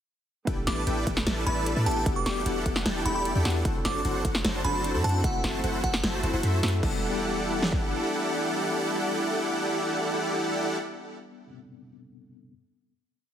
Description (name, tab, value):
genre	future bass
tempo	151 BPM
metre	4/4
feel	half-time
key	E minor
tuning	A4 = 439 Hz
part	tine electric piano	accompaniment	0.5-12.5 s	G3 to F#5	-36 LUFS	left 4 dB	overdrive, medium stereo tremolo, sidechain pumping, digital delay
part	rich studio string section	sustained chords	0.5-10.8 s	E3 to F#5	-38 LUFS	right 1 dB	sidechain pumping
part	dense compressed supersaw	riff	0.5-10.8 s	D4 to A5	-29 LUFS	equal	sidechain pumping, digital delay
part	warm 808-style bass	bass	0.5-8.0 s	E1 to A2	-30 LUFS	equal	sidechain pumping
part	big-room dance drum kit	drums	0.5-7.8 s	kick drum, snare drum	-29 LUFS	equal	none
part	big-room dance drum kit	drums	0.5-6.9 s	crash cymbal, hi-hat, snare drum	-30 LUFS	equal	none
part	glassy synth bell	melody	0.7-6.0 s	F#5 to D6	-33 LUFS	right 2 dB	chorus, sidechain pumping, digital delay
room	light reverb, digital ambience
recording	heavily compressed radio sound, multiband compression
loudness	-24 LUFS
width	side -10 dB against mid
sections	0.5-6.8 drop; 6.8-10.0 final chord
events	drop 0.5-6.8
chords	0.5 A9sus4; 2.1 Em11; 3.7 D7/F#; 5.2 F#m7b5; 6.8 Em11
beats	| 0.47 0.87 1.27 1.66 | 2.06 2.46 2.86 3.25 | 3.65 4.05 4.45 4.84 | 5.24 5.64 6.04 6.43 | 6.83 7.23 7.62 8.02 | 8.42 8.82 9.21 9.61